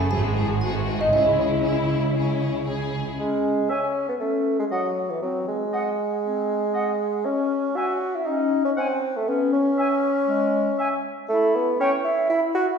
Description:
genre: cinematic, playful, whimsical film cue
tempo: 118 BPM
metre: 4/4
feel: straight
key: C# minor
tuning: A4 = 440 Hz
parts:
  - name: clear chamber violin section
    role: melody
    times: 0.0-3.2 s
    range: E4 to G#4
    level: -36 LUFS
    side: left 4 dB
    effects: none
  - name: music box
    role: melody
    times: 0.0-2.6 s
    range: D#5 to G#5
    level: -24 LUFS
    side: right 2 dB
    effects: none
  - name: rich chamber violin section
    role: second line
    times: 0.0-3.2 s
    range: G#3 to G#4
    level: -31 LUFS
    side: left 2 dB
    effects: none
  - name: warm chamber viola section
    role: accompaniment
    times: 0.0-2.7 s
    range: D#4 to G#4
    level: -32 LUFS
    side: left 2 dB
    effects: none
  - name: warm French horn section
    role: sustained chords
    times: 0.0-2.9 s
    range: D#4 to F#4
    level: -30 LUFS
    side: left 9 dB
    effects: none
  - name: dark studio double bass section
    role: bass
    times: 0.0-2.9 s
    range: G#1 to C#2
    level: -28 LUFS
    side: right 3 dB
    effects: none
  - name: warm chamber cello section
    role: bass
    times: 0.0-2.9 s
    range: G#2 to C#3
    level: -28 LUFS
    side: right 2 dB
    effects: none
  - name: warm clarinet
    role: second line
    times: 3.2-12.7 s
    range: G#3 to E4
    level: -27 LUFS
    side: left 4 dB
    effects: none
  - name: warm bassoon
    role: accompaniment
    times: 3.2-12.7 s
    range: E3 to F#4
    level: -22 LUFS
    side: right 1 dB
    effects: none
  - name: concert flute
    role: second line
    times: 3.7-11.9 s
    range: F#5 to G#5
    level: -32 LUFS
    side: left 2 dB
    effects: none
  - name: warm oboe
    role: second line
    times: 3.7-12.0 s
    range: C#5 to F#5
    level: -33 LUFS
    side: right 1 dB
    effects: none
room: wet scoring stage reverb, RT60 1.6 s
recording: heard from further back in the room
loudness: -21 LUFS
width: side -6 dB against mid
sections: 0.0-3.2 A section; 3.2-12.8 B section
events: none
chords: 0.1 G#7b9; 1.1 C#m; 4.2 Esus2 (rootless); 5.2 G#7/F#; 7.3 N.C.; 8.3 A(#11) (rootless); 9.3 C#5; 11.3 C#m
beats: 0.11 0.62 | 1.13 1.65 2.16 2.67 | 3.18 3.69 4.20 4.71 | 5.22 5.73 6.23 6.74 | 7.25 7.76 8.26 8.77 | 9.27 9.78 10.28 10.79 | 11.29 11.80 12.30

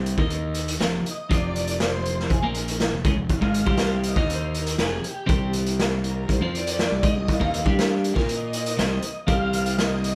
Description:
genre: psychedelic rock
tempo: 120 BPM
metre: 4/4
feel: straight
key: F dorian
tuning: A4 = 440 Hz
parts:
  - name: twelve-string electric guitar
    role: riff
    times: 0.0-10.2 s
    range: F2 to Bb4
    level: -29 LUFS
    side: equal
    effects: none
  - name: fuzz fingered electric bass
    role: bass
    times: 0.0-10.2 s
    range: F1 to Bb2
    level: -31 LUFS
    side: equal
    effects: overdrive
  - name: raw garage drum kit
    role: drums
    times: 0.1-10.2 s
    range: hi-hat, kick drum, snare drum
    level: -27 LUFS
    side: equal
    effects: none
  - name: ensemble organ-string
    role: sustained chords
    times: 1.1-10.2 s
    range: G4 to F5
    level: -33 LUFS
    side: equal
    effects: phaser, ensemble chorus
room: moderate studio reverb, RT60 0.6 s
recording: band playing live in one room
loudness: -24 LUFS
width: mono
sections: 0.0-10.2 A section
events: string machine solo 0.0-10.2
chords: 0.2 Eb5; 0.8 F5; 2.4 Bb5; 2.9 Fm7; 3.7 C5; 4.2 Eb5; 4.8 Fm; 5.3 C5; 6.4 F5; 6.9 Cm; 7.7 G5; 8.2 Bb5; 8.8 Cm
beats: 0.30 0.80 | 1.30 1.80 2.29 2.79 | 3.29 3.79 4.29 4.79 | 5.29 5.79 6.28 6.78 | 7.28 7.78 8.28 8.78 | 9.28 9.78

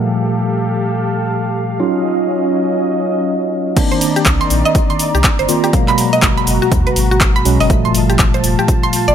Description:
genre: deep house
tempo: 122 BPM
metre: 4/4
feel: swing 61% on 16ths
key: unclear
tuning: A4 = 443 Hz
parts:
  - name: warm analog pad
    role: sustained chords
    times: 0.0-9.1 s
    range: Eb3 to Bb5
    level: -20 LUFS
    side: left 1 dB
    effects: chorus, sidechain pumping
  - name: tine electric piano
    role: stabs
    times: 0.0-9.1 s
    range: Bb2 to F4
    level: -17 LUFS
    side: equal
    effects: medium stereo tremolo, sidechain pumping, low-pass filter, tape echo
  - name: electronic kick drum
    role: drums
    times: 3.8-8.8 s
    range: none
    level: -15 LUFS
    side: equal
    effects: overdrive, small room reverb
  - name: punchy analog drum machine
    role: drums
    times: 3.8-9.1 s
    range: crash cymbal, handclaps, hi-hat, shaker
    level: -19 LUFS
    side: equal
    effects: overdrive, small room reverb
  - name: mallet-like synth pluck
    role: arpeggios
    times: 3.9-9.1 s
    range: Gb4 to C6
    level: -18 LUFS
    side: right 1 dB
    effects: chorus, sidechain pumping, ping-pong delay
  - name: sub bass with octave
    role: bass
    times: 4.3-9.1 s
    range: F1 to Eb2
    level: -18 LUFS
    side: equal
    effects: sidechain pumping
room: light reverb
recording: none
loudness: -12 LUFS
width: side -9 dB against mid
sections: 0.0-3.8 A section; 3.8-9.1 B section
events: filter sweep on tine electric piano 0.0-3.8; drop 3.8-9.1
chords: 0.0 Gm9; 1.8 Ebm9; 3.8 Cm9; 5.7 Abm9; 7.7 Gm9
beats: 0.32 0.81 1.31 | 1.80 2.29 2.78 3.27 | 3.77 4.26 4.75 5.24 | 5.73 6.22 6.72 7.21 | 7.70 8.19 8.68

